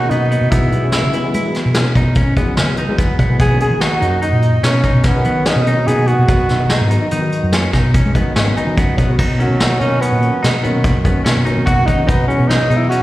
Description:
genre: progressive instrumental, band music in an uneven meter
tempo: 145 BPM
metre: 7/4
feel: straight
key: B major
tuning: A4 = 440 Hz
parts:
  - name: breathy tenor saxophone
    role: melody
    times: 0.0-13.0 s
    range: F#3 to G#4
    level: -18 LUFS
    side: right 1 dB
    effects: slapback echo
  - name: dark baby grand piano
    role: accompaniment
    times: 0.0-13.0 s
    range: D#3 to G#5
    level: -21 LUFS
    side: left 2 dB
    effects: slapback echo
  - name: clean electric guitar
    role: arpeggios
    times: 0.0-13.0 s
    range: B3 to F#4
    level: -23 LUFS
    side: equal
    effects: slapback echo
  - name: fretless electric bass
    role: bass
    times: 0.1-12.9 s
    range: F#2 to C#4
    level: -16 LUFS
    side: equal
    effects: none
  - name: vintage brush drum kit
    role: drums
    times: 0.1-13.0 s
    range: crash cymbal, hi-hat, kick drum, snare drum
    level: -18 LUFS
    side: equal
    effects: none
room: light reverb, small room ambience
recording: live gig heard through the venue's PA, recital hall reverb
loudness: -12 LUFS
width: side -16 dB against mid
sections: 0.0-9.2 A section; 9.2-13.0 B section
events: grand piano fill 8.4-9.2; tenor saxophone solo 9.2-13.0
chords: 0.0 Bmaj7; 0.5 Eadd9/B; 3.4 Bmaj7; 6.3 B; 9.2 Bmaj7; 12.1 Eadd9/B

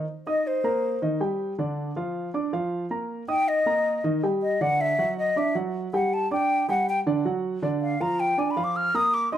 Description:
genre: jazz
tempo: 159 BPM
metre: 4/4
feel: straight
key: Eb major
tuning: A4 = 440 Hz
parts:
  - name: warm baby grand piano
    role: accompaniment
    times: 0.0-9.4 s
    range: D3 to Eb6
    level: -26 LUFS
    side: right 2 dB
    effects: none
  - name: breathy mellow silver concert flute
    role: melody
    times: 0.3-9.4 s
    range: C5 to F6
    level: -24 LUFS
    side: left 1 dB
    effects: plate reverb
room: moderate studio reverb, RT60 0.6 s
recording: none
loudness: -23 LUFS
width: side -10 dB against mid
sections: 0.1-9.4 A section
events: flute solo 0.1-9.4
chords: 0.1 Eb; 1.6 Dm; 3.1 Eb; 4.6 G5; 7.6 Bb

